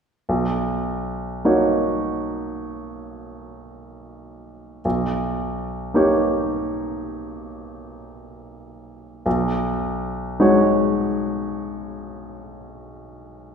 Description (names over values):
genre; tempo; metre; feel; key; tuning
classical; 53 BPM; 4/4; rubato; B major; A4 = 439 Hz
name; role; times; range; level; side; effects
clear baby grand piano; accompaniment; 0.3-13.5 s; B1 to C#5; -21 LUFS; equal; none
room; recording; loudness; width
wet scoring stage reverb, RT60 1.9 s; heard from further back in the room; -20 LUFS; side -6 dB against mid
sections
0.3-13.5 A section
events
none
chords
0.3 Bmaj9; 4.8 D#7/B; 9.3 B69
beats
| 0.27 1.44 2.57 3.73 | 4.85 5.95 7.06 8.15 | 9.26 10.40 11.51 12.64